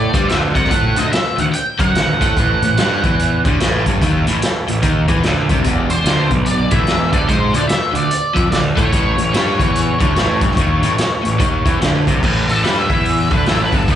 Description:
blues rock power trio and southern rock; 146 BPM; 4/4; swing 62% on 8ths; A mixolydian; A4 = 441 Hz
octave-fuzz lead guitar; melody; 0.0-3.4, 5.9-14.0 s; A4 to G5; -20 LUFS; equal; wah, distortion, slapback echo
overdriven electric guitar; riff; 0.0-14.0 s; E2 to A3; -19 LUFS; equal; slapback echo
fuzz picked electric bass; bass; 0.0-14.0 s; E1 to A2; -19 LUFS; equal; overdrive
overdriven tonewheel organ; sustained chords; 0.1-12.2 s; C4 to A5; -28 LUFS; right 3 dB
raw garage drum kit; drums; 0.1-14.0 s; crash cymbal, hi-hat, kick drum, snare drum; -18 LUFS; equal
small room ambience; live gig heard through the venue's PA, club reverb, nothing above 10.7 kHz; -13 LUFS; side -10 dB against mid
0.0-12.2 A section; 12.2-14.0 B section
tonewheel organ fill 5.0-5.6; lead electric guitar solo 12.2-14.0
0.0 D7#9; 0.7 D#dim7; 2.4 A7#9; 5.6 E7#9; 7.3 D7#9; 8.9 A7#9; 12.2 A7(no3)
0.30 | 0.72 1.13 1.54 1.95 | 2.36 2.77 3.19 3.60 | 4.01 4.42 4.83 5.24 | 5.65 6.05 6.46 6.88 | 7.29 7.70 8.11 8.52 | 8.93 9.34 9.75 10.16 | 10.57 10.99 11.40 11.81 | 12.23 12.64 13.05 13.47 | 13.88

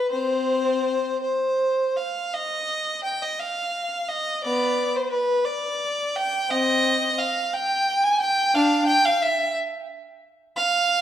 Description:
classical, baroque-style suite movement for unaccompanied violin; 53-60 BPM (dotted quarters); 6/8; rubato; C minor; A4 = 440 Hz
clear violin; solo; 0.0-11.0 s; B3 to Ab5; -21 LUFS; equal
moderate scoring stage reverb, RT60 1.8 s; dark, warm production; -21 LUFS; side -10 dB against mid
0.0-2.3 A section; 2.3-11.0 B section
| 0.12 1.23 | 2.34 3.39 | 4.43 5.46 | 6.50 7.53 | 8.54 9.54 | 10.55

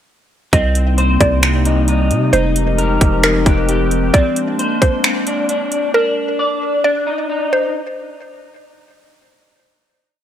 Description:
hip hop, atmospheric cloud-rap; 133 BPM; 4/4; half-time; Eb major; A4 = 436 Hz
mallet-like synth pluck; melody; 0.5-7.7 s; Bb4 to Eb5; -20 LUFS; right 1 dB; chorus, digital delay
warbly tape-like pad; sustained chords; 0.9-5.9 s; C3 to Bb4; -19 LUFS; left 1 dB; chorus, built-in reverb, sidechain pumping
electric guitar through a small old amp; arpeggios; 0.5-7.7 s; C4 to D5; -20 LUFS; left 2 dB; ensemble chorus, digital delay
long sustained 808-style bass; bass; 0.5-4.1 s; F1 to C3; -16 LUFS; equal
trap drum kit; drums; 0.5-5.8 s; finger snaps, hi-hat, kick drum; -16 LUFS; equal; overdrive
light reverb, digital ambience; -13 LUFS; side -10 dB against mid
0.5-7.7 verse
0.5 Cm7; 2.3 Fm11; 4.1 Bb9; 5.9 Eb5
| 0.53 0.98 1.43 1.88 | 2.33 2.78 3.23 3.69 | 4.14 4.59 5.04 5.49 | 5.94 6.39 6.84 7.29

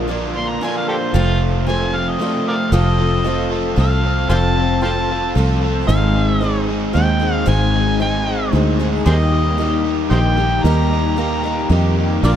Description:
rock; 114 BPM; 3/4; straight; A4 = 442 Hz
picked twelve-string acoustic guitar; accompaniment; 0.0-12.4 s; F2 to Ab4; -24 LUFS; left 7 dB; dub echo
crunchy overdriven guitar; riff; 0.0-12.4 s; F2 to A4; -21 LUFS; right 1 dB; dub echo
fingered electric bass; bass; 0.0-12.4 s; F1 to F2; -18 LUFS; equal
clear baby grand piano; accompaniment; 0.1-12.4 s; D4 to G5; -27 LUFS; right 5 dB; dub echo
overdriven harmonica; melody; 0.4-12.4 s; F4 to C6; -22 LUFS; equal; dub echo
light reverb, small room ambience; echo-heavy mix; -15 LUFS; side -10 dB against mid
0.0-2.7 A section; 2.7-12.4 B section
harmonica solo 0.0-2.7
0.0 Bb; 1.1 F; 5.9 Ab; 9.1 Eb
0.10 0.62 | 1.15 1.68 2.20 | 2.73 3.25 3.78 | 4.31 4.83 5.36 | 5.89 6.42 6.95 | 7.47 8.00 8.53 | 9.06 9.59 10.12 | 10.64 11.17 11.70 | 12.23

